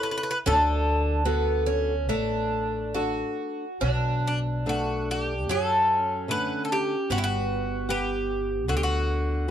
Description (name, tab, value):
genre	fado-style ballad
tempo	68-77 BPM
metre	4/4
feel	rubato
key	D major, B minor from 3.8 s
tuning	A4 = 441 Hz
part	Irish bouzouki	melody	0.0-9.5 s	D4 to B4	-26 LUFS	left 1 dB	none
part	picked twelve-string acoustic guitar	second line	0.0-9.5 s	B3 to F#4	-31 LUFS	right 4 dB	none
part	flamenco guitar	accompaniment	0.0-9.5 s	B2 to F#5	-30 LUFS	left 2 dB	none
part	upright bass	bass	0.5-9.5 s	G1 to F#2	-29 LUFS	equal	none
room	light reverb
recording	none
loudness	-23 LUFS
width	side -9 dB against mid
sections	0.0-3.8 A section; 3.8-9.5 B section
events	none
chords	0.5 D; 3.8 Bm7; 7.1 Gmaj7